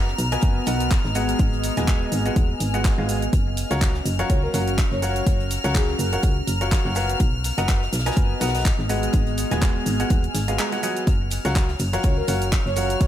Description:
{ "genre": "piano house", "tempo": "124 BPM", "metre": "4/4", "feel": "swing 56% on 16ths", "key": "F# major", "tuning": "A4 = 440 Hz", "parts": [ { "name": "bright chamber violin section", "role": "sustained chords", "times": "0.0-13.1 s", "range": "E#6", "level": "-31 LUFS", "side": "left 2 dB", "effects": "sidechain pumping" }, { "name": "clear baby grand piano", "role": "riff", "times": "0.0-13.1 s", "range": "F#3 to A#5", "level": "-27 LUFS", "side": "equal", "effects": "sidechain pumping, ping-pong delay" }, { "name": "solid FM bass", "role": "bass", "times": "0.0-13.1 s", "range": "D#1 to C#2", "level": "-25 LUFS", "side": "equal", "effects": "tube saturation, sidechain pumping" }, { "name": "warbly tape-like pad", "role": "texture", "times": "0.0-13.1 s", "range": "B3 to A#5", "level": "-31 LUFS", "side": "equal", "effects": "chorus, built-in reverb, phaser, sidechain pumping" }, { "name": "natural country drum kit", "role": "drums", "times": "0.1-13.1 s", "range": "hi-hat, snare drum", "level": "-39 LUFS", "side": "left 3 dB", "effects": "none" }, { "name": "house drum kit", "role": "drums", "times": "0.2-13.1 s", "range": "handclaps, hi-hat, ride cymbal, shaker", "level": "-30 LUFS", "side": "right 1 dB", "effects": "none" }, { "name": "electronic kick drum", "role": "drums", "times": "0.4-13.1 s", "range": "none", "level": "-20 LUFS", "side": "equal", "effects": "none" }, { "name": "breathy flute-like synth lead", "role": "melody", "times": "4.3-6.2, 12.0-13.1 s", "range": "G#4 to C#5", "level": "-31 LUFS", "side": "equal", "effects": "lush chorus, ping-pong delay" } ], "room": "light reverb, small room ambience", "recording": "none", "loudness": "-19 LUFS", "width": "side -11 dB against mid", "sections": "0.0-13.1 A section", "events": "none", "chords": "0.0 Bmaj7; 1.2 G#m7; 3.3 F#maj7; 8.9 G#m7; 11.1 F#maj7", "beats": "0.43 0.91 | 1.39 1.88 2.36 2.85 | 3.33 3.81 4.30 4.78 | 5.26 5.75 6.23 6.72 | 7.20 7.68 8.17 8.65 | 9.14 9.62 10.10 10.59 | 11.07 11.56 12.04 12.52 | 13.01" }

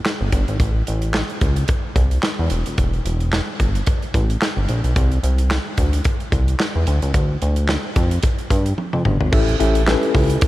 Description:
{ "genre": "early-eighties boogie funk", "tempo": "110 BPM", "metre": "4/4", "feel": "swing 56% on 16ths", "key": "unclear", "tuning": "A4 = 439 Hz", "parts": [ { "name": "modern studio drum kit", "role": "drums", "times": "0.1-10.5 s", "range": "crash cymbal, handclaps, hi-hat, kick drum, snare drum, toms", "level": "-20 LUFS", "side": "equal", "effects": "none" }, { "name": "chorused synth bass", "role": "bass", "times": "0.2-10.4 s", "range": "Eb1 to G2", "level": "-18 LUFS", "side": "equal", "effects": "none" }, { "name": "tine electric piano", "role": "accompaniment", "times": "9.3-10.5 s", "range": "C#4 to E5", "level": "-18 LUFS", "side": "left 3 dB", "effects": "overdrive, fast stereo tremolo" } ], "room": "light reverb, small room ambience", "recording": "none", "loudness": "-17 LUFS", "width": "side -16 dB against mid", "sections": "0.0-9.3 A section; 9.3-10.5 B section", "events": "drum fill 8.8-9.3", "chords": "0.0 N.C.; 0.6 A; 2.5 Em; 5.0 N.C.; 6.9 Dm; 9.3 A7", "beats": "0.05 | 0.60 1.14 1.69 2.23 | 2.78 3.33 3.87 4.42 | 4.96 5.51 6.05 6.60 | 7.14 7.69 8.23 8.78 | 9.32 9.87 10.42" }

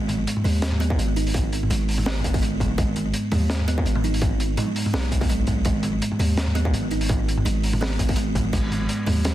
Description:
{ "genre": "half-time drum and bass", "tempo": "167 BPM", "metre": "4/4", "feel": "swing 54% on 16ths, half-time", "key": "G# minor", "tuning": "A4 = 441 Hz", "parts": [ { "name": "buzzing kalimba", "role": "arpeggios", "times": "0.0-9.3 s", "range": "F#3 to D#4", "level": "-27 LUFS", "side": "right 2 dB", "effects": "ping-pong delay" }, { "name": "long sustained 808-style bass", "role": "bass", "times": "0.0-9.3 s", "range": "G#1 to D#2", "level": "-24 LUFS", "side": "equal", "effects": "none" }, { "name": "crunchy breakbeat drum kit", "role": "drums", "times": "0.1-9.3 s", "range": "crash cymbal, hi-hat, snare drum, toms", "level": "-27 LUFS", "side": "equal", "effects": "none" }, { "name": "electronic kick drum", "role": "drums", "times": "0.9-8.6 s", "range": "none", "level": "-26 LUFS", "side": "equal", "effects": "distortion" } ], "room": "moderate echo chamber reverb, RT60 1.8 s", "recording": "dense, heavily limited modern master", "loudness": "-20 LUFS", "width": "side -13 dB against mid", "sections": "0.0-9.3 A section", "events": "none", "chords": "0.0 G#m", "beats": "0.27 0.63 0.99 | 1.34 1.70 2.06 2.42 | 2.78 3.14 3.50 3.86 | 4.22 4.58 4.94 5.30 | 5.66 6.02 6.38 6.73 | 7.09 7.45 7.81 8.17 | 8.53 8.89 9.25" }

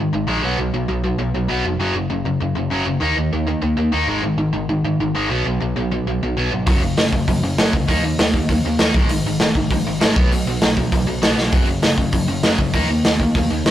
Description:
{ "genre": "punk rock", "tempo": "197 BPM", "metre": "4/4", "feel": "straight", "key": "unclear", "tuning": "A4 = 440 Hz", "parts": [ { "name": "biting overdriven guitar", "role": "riff", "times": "0.0-13.7 s", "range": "F#2 to D#4", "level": "-20 LUFS", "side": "equal", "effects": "none" }, { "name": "overdriven picked electric bass", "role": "bass", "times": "0.0-13.7 s", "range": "E#1 to G#2", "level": "-25 LUFS", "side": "equal", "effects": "none" }, { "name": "raw garage drum kit", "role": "drums", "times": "6.7-13.7 s", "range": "hi-hat, kick drum, snare drum", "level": "-17 LUFS", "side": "equal", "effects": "none" } ], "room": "light reverb", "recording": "rough rehearsal-room recording, warm saturation", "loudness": "-16 LUFS", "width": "side -12 dB against mid", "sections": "0.0-13.7 A section", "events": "drum fill 11.4", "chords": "0.4 B5; 1.8 F#5; 3.0 D#5; 4.1 G#5; 5.3 B5; 6.7 F#5; 7.9 D#5; 8.9 G#5; 10.2 B5; 11.5 F#5; 12.7 D#5", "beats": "0.28 | 0.58 0.89 1.19 1.50 | 1.80 2.11 2.41 2.71 | 3.02 3.32 3.63 3.93 | 4.24 4.54 4.84 5.15 | 5.45 5.76 6.06 6.37 | 6.67 6.97 7.28 7.58 | 7.88 8.19 8.49 8.80 | 9.10 9.40 9.71 10.01 | 10.32 10.62 10.92 11.23 | 11.53 11.84 12.14 12.44 | 12.75 13.05 13.36 13.66" }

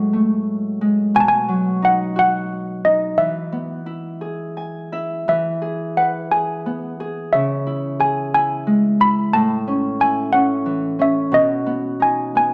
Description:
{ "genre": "children's music", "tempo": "59 BPM (dotted quarters)", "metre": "6/8", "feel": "rubato", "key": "E major", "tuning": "A4 = 441 Hz", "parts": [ { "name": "malleted handbells", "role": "melody", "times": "0.0-12.5 s", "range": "D#5 to B5", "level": "-20 LUFS", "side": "equal", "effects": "none" }, { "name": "Celtic harp", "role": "accompaniment", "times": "0.0-12.5 s", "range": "A2 to G#5", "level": "-23 LUFS", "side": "equal", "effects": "none" } ], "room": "moderate recital hall reverb, RT60 1.5 s", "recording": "dark, warm production", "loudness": "-19 LUFS", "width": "mono", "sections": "0.0-5.3 A section; 5.3-12.5 B section", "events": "harp fill 4.2-5.3", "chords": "0.0 F#madd9/A; 1.2 B; 3.2 E; 7.3 C#m; 9.3 A; 11.3 B", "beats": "0.14 | 1.15 2.17 | 3.18 4.22 | 5.26 6.31 | 7.33 8.33 | 9.33 10.34 | 11.34 12.36" }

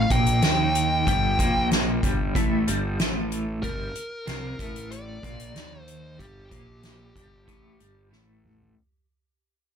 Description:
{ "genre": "psychedelic rock", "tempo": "94 BPM", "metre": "4/4", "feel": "straight", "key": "G minor", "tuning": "A4 = 440 Hz", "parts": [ { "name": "fuzz lead guitar", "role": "melody", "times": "0.0-8.1 s", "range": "G4 to G5", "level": "-28 LUFS", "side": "left 1 dB", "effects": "distortion, tape echo" }, { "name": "twelve-string electric guitar", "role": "riff", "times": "0.0-8.7 s", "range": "G2 to Eb3", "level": "-27 LUFS", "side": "right 1 dB", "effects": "tremolo, double-tracked left and right" }, { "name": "fuzz fingered electric bass", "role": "bass", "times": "0.0-8.7 s", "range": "G1 to Eb2", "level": "-30 LUFS", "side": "equal", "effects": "overdrive" }, { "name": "soft-mallet drum kit", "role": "drums", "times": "0.1-8.8 s", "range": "hi-hat, kick drum, snare drum, toms", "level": "-27 LUFS", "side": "equal", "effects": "none" } ], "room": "moderate studio ambience, RT60 0.5 s", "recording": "none", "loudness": "-22 LUFS", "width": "side -8 dB against mid", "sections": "0.0-8.8 A section", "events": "fade-out 0.0-8.8; drum fill 8.1-8.8", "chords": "0.0 Gm", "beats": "0.43 | 1.07 1.71 2.35 2.99 | 3.63 4.27 4.91 5.55 | 6.20 6.84 7.48 8.12" }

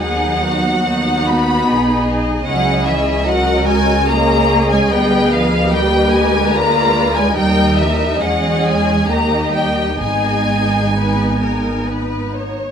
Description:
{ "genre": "classical, slow romantic movement for string orchestra", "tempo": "62-79 BPM", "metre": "3/4", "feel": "rubato", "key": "G# minor", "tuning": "A4 = 436 Hz", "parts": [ { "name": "rich studio violin section", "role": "melody", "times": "0.0-11.9 s", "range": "E5 to B5", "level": "-19 LUFS", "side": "left 3 dB", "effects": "none" }, { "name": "rich studio violin section", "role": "second line", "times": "0.0-12.7 s", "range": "F#4 to F#5", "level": "-20 LUFS", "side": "left 2 dB", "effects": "none" }, { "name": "warm studio viola section", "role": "accompaniment", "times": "0.0-12.6 s", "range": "G3 to G#4", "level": "-20 LUFS", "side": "equal", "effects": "none" }, { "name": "rich studio cello section", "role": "bass", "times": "0.0-11.9 s", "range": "E3 to B3", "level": "-20 LUFS", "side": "right 2 dB", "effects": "none" }, { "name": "rich studio double bass section", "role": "bass", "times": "0.0-12.6 s", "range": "G#1 to E2", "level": "-21 LUFS", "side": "right 2 dB", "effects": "none" } ], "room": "moderate recital hall reverb, RT60 1.8 s", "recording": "close, detailed microphones", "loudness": "-13 LUFS", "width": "side -7 dB against mid", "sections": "0.0-12.7 A section", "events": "none", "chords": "0.0 B/D#; 2.5 C#m; 4.9 Ddim7; 7.4 D#; 8.2 E; 9.1 D#; 10.0 G#m", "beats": "| 0.02 0.86 1.71 | 2.47 3.26 4.09 | 4.91 5.73 6.54 | 7.37 8.21 9.08 | 10.00 10.95 11.89" }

